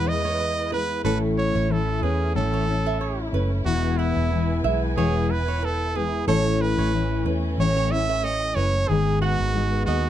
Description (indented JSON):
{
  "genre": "acoustic pop",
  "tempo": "92 BPM",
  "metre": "4/4",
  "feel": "swing 55% on 16ths",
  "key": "unclear",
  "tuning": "A4 = 438 Hz",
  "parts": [
    { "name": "brilliant trumpet", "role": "melody", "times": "0.0-10.1 s", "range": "E4 to E5", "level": "-26 LUFS", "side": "right 3 dB", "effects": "none" },
    { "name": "fingerpicked steel-string acoustic guitar", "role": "accompaniment", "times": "0.0-10.1 s", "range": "E2 to G#4", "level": "-26 LUFS", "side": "left 5 dB", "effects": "none" },
    { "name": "rich studio string section", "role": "sustained chords", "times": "0.0-10.1 s", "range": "D#3 to G#5", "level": "-35 LUFS", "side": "right 1 dB", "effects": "none" },
    { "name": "vintage muted fingered electric bass", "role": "bass", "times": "0.0-10.1 s", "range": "E1 to E2", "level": "-25 LUFS", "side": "right 1 dB", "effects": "none" },
    { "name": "flamenco guitar", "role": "arpeggios", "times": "0.2-10.0 s", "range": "A4 to F#5", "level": "-31 LUFS", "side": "right 7 dB", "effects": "none" }
  ],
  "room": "light reverb",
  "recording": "dark, warm production",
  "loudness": "-21 LUFS",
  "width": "side -11 dB against mid",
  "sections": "0.0-10.1 A section",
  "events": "none",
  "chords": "0.0 E; 1.0 A; 3.7 E; 6.3 A; 8.9 G#m"
}